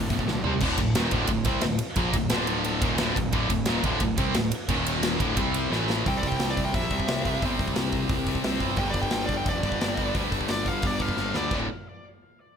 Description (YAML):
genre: heavy metal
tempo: 176 BPM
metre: 4/4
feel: straight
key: unclear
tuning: A4 = 443 Hz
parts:
  - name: distorted electric guitar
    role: riff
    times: 0.0-11.7 s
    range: D2 to C4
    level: -30 LUFS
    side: left 12 dB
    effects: overdrive
  - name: high-gain distorted guitar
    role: riff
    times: 0.0-6.1 s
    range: D2 to C4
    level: -31 LUFS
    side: right 1 dB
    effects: distortion
  - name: tight distorted guitar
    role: riff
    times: 0.0-11.7 s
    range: D2 to C4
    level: -30 LUFS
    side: right 11 dB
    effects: distortion
  - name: fuzz picked electric bass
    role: bass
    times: 0.0-11.7 s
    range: D1 to D2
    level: -31 LUFS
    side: equal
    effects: overdrive
  - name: big rock drum kit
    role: drums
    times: 0.1-11.6 s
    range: crash cymbal, hi-hat, kick drum, ride cymbal, snare drum, toms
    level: -28 LUFS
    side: equal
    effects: none
  - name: high-gain lead guitar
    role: melody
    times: 6.1-11.5 s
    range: D5 to G5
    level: -32 LUFS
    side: left 1 dB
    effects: distortion, tape echo
room: light reverb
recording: none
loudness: -23 LUFS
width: side -7 dB against mid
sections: 0.6-6.1 A section; 6.1-11.5 B section; 11.5-12.6 C section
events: drum fill 0.3-0.6, 5.7-6.1, 11.2-11.5; lead electric guitar solo 6.1-11.5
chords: 0.4 C5; 0.6 Dm; 4.7 Eb5; 5.2 D5; 5.4 C5; 5.7 A5; 6.1 C; 8.8 G5; 11.5 D5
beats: 0.28 | 0.62 0.96 1.30 1.64 | 1.98 2.32 2.66 3.00 | 3.34 3.68 4.02 4.36 | 4.70 5.04 5.38 5.72 | 6.06 6.40 6.74 7.08 | 7.42 7.76 8.10 8.45 | 8.79 9.13 9.47 9.81 | 10.15 10.49 10.84 11.18 | 11.52